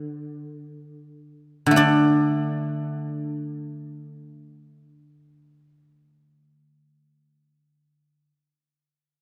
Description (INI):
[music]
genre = chinese traditional, Chinese solo plucked strings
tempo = free time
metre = none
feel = none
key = unclear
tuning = A4 = 444 Hz
[part]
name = guzheng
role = solo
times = 0.0-8.3 s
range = D3 to D5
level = -24 LUFS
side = equal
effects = none
[sound]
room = moderate lush hall reverb, RT60 2.6 s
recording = rough home demo mix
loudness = -23 LUFS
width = mono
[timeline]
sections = 0.0-1.8 A section; 1.8-8.6 B section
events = none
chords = none